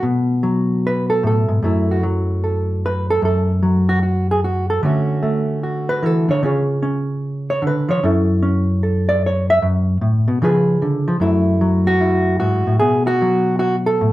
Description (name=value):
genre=solo jazz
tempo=150 BPM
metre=4/4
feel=swing 64% on 8ths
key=F# minor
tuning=A4 = 441 Hz
part: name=hollow-body jazz guitar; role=solo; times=0.0-14.1 s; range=F#2 to E5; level=-15 LUFS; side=equal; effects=none
room=wet club reverb, RT60 0.7 s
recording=heard from further back in the room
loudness=-15 LUFS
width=side -16 dB against mid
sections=0.0-11.2 A section; 11.2-14.1 B section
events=hollow-body jazz guitar solo 0.0-11.2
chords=0.0 B7(no3); 1.6 F#m7; 4.8 Dmaj7; 6.4 C#; 8.0 F#m7; 10.4 C#7; 11.2 F#m7; 12.8 B5